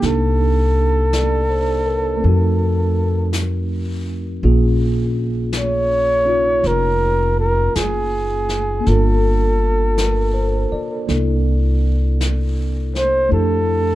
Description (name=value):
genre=jazz ballad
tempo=54 BPM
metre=4/4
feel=swing 66% on 8ths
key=F major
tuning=A4 = 445 Hz
part: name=breathy flugelhorn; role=melody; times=0.0-13.9 s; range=Ab4 to Db5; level=-19 LUFS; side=equal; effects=plate reverb
part: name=tine electric piano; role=accompaniment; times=0.0-13.9 s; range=A3 to D5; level=-23 LUFS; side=right 1 dB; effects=slow stereo tremolo
part: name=upright bass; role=bass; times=0.0-13.9 s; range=F1 to F2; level=-18 LUFS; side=equal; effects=none
part: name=jazz brush drum kit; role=drums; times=0.0-13.9 s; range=brushed snare drum, hi-hat, snare drum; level=-30 LUFS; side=left 3 dB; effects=none
room=light reverb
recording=dark, warm production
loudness=-15 LUFS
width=side -15 dB against mid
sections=0.0-13.9 A section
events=none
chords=0.0 Cm9; 2.2 F7b9; 4.4 Bbm7; 8.9 Gm9; 11.1 C13; 13.3 Fmaj13